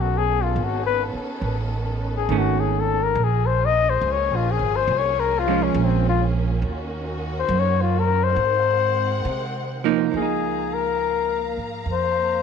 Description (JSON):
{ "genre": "jazz ballad", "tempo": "69 BPM", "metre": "4/4", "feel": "swing 66% on 8ths", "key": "Bb minor", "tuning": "A4 = 440 Hz", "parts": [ { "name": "warm flugelhorn", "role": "melody", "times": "0.0-12.4 s", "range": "C4 to Eb5", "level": "-22 LUFS", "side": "left 10 dB", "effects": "tape echo" }, { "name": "warm studio string section", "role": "sustained chords", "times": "0.0-12.4 s", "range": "D#3 to Bb5", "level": "-32 LUFS", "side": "right 1 dB", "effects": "none" }, { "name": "upright bass", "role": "bass", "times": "0.0-12.4 s", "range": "Ab1 to C3", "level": "-24 LUFS", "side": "right 3 dB", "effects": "none" }, { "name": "hollow-body jazz guitar", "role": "accompaniment", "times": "2.3-12.4 s", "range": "D#3 to Eb4", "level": "-24 LUFS", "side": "right 16 dB", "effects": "none" } ], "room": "moderate spring reverb, RT60 2.2 s", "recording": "1960s-style stereo with parts hard left and right", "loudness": "-19 LUFS", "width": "side -6 dB against mid", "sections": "0.0-10.1 A section; 10.1-12.4 B section", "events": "flugelhorn solo 0.0-10.1", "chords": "0.0 B9; 3.2 Bbm7; 6.6 Ebm7; 8.4 Ab7; 10.1 Db69" }